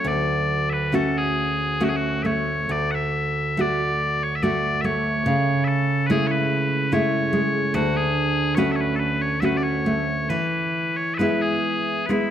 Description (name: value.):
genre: celtic folk, Celtic slow air.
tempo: 64-74 BPM.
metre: 3/4.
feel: rubato.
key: unclear.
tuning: A4 = 440 Hz.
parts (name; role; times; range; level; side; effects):
loud bright bagpipes; melody; 0.0-12.3 s; E4 to F#5; -24 LUFS; left 1 dB; none.
nylon-string guitar; accompaniment; 0.0-12.3 s; D2 to F#4; -22 LUFS; right 1 dB; none.
room: moderate concert hall reverb, RT60 2.0 s.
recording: dark, warm production.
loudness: -20 LUFS.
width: side -10 dB against mid.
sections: 0.0-12.3 A section.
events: none.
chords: 0.0 Dmaj7; 5.3 Amaj7/C#; 7.7 Dmaj7; 10.3 E.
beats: | 0.04 0.92 1.81 | 2.70 3.59 4.43 | 5.27 6.10 6.92 | 7.74 8.57 9.43 | 10.31 11.19 12.10.